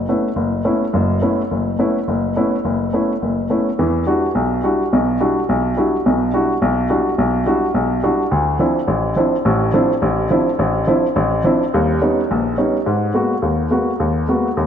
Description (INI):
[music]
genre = jazz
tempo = 211 BPM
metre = 4/4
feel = swing 61% on 8ths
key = unclear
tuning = A4 = 440 Hz
[part]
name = dark baby grand piano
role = solo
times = 0.0-14.7 s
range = F#1 to F#4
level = -15 LUFS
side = equal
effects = tape echo
[sound]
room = wet plate reverb, RT60 3.0 s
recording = dreamy mix soaked in reverb, nothing above 10.7 kHz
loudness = -15 LUFS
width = side -8 dB against mid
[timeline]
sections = 0.0-3.8 A section; 3.8-12.9 B section; 12.9-14.7 C section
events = none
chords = 0.0 B9sus4; 3.8 Em9; 8.3 Dm9; 11.7 D#7b13; 12.9 G#m9